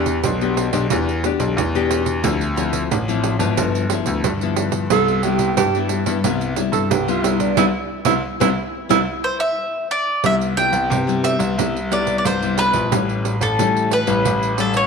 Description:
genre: samba and choro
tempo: 90 BPM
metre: 4/4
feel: straight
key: C major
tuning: A4 = 439 Hz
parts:
  - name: breathy tenor saxophone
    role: second line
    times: 0.0-0.6, 4.9-9.0 s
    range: B3 to A4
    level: -21 LUFS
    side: right 9 dB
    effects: none
  - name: nylon-string guitar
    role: accompaniment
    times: 0.0-14.9 s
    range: G2 to G4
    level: -22 LUFS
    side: left 9 dB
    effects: none
  - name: bright concert grand piano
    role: bass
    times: 0.0-14.8 s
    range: G1 to C3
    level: -22 LUFS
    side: equal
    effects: none
  - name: pandeiro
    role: percussion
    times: 0.1-14.9 s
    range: none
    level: -24 LUFS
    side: right 11 dB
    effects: none
  - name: mandolin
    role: melody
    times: 9.2-14.9 s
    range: A4 to G5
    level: -19 LUFS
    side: equal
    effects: none
room: moderate echo chamber reverb, RT60 2.3 s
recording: 1960s-style stereo with parts hard left and right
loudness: -17 LUFS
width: side -5 dB against mid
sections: 0.0-10.2 A section; 10.2-14.9 B section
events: tenor saxophone solo 0.0-10.2; band accent 7.6-10.2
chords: 0.0 Em7; 2.2 Dm9; 3.6 G6; 4.9 Cmaj7; 12.9 A7

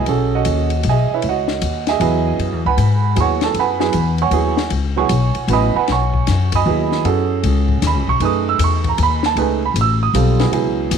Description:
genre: modal jazz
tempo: 155 BPM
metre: 3/4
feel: swing 65% on 8ths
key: F# dorian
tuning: A4 = 439 Hz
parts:
  - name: warm grand piano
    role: accompaniment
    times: 0.0-11.0 s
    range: F#3 to E6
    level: -18 LUFS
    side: right 10 dB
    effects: none
  - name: upright bass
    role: bass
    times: 0.0-11.0 s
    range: A1 to G#2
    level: -18 LUFS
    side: left 3 dB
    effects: none
  - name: compact cocktail drum kit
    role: drums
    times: 0.1-11.0 s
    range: hi-hat, kick drum, ride cymbal, snare drum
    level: -25 LUFS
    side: left 11 dB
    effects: none
room: light reverb, studio reverb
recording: 1960s-style stereo with parts hard left and right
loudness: -14 LUFS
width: side -7 dB against mid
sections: 0.0-11.0 A section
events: none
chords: 0.0 F#13sus4

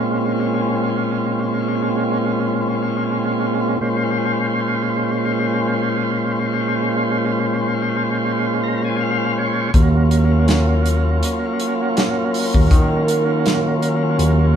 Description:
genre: straight-eighth soul blues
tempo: 81 BPM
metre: 4/4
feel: swing 56% on 16ths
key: Bb minor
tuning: A4 = 439 Hz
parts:
  - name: tonewheel organ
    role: accompaniment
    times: 0.0-14.6 s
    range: Bb2 to Bb5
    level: -18 LUFS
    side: equal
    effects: slow rotary speaker, overdrive
  - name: barky tine electric piano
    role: bass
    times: 9.7-14.6 s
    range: Eb2 to Eb3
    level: -16 LUFS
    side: right 1 dB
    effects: overdrive, phaser
  - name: warm soul drum kit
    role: drums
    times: 9.7-14.4 s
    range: hi-hat, kick drum, snare drum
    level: -18 LUFS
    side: equal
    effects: none
room: moderate studio reverb, RT60 0.7 s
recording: band playing live in one room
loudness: -16 LUFS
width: side -8 dB against mid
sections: 0.0-14.6 A section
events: tonewheel organ fill 8.3-9.7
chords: 0.0 Bbm7; 9.7 Ebm7

